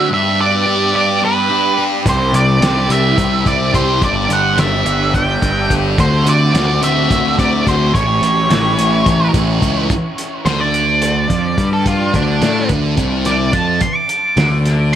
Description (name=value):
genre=psychedelic rock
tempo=214 BPM (eighths)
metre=7/8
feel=straight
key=unclear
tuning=A4 = 440 Hz
part: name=octave-fuzz lead guitar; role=melody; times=0.0-15.0 s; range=D4 to D6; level=-17 LUFS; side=right 2 dB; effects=distortion, dub echo
part: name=rich studio string section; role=sustained chords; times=0.0-9.9 s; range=G3 to G4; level=-25 LUFS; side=right 2 dB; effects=none
part: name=thick fuzz guitar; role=riff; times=0.0-15.0 s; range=G2 to G4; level=-17 LUFS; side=equal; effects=distortion, phaser, dub echo
part: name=fuzz picked electric bass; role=bass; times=2.1-15.0 s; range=G1 to A2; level=-18 LUFS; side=equal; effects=overdrive
part: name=cloth-damped thuddy drum kit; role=drums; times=2.1-15.0 s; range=hi-hat, kick drum, snare drum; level=-20 LUFS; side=equal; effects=none
room=light reverb, studio reverb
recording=echo-heavy mix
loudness=-12 LUFS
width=side -10 dB against mid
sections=0.0-9.9 A section; 9.9-15.0 B section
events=lead electric guitar solo 9.9-15.0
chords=0.1 G; 2.1 C; 4.0 G; 6.0 D7; 7.9 A7; 9.9 N.C.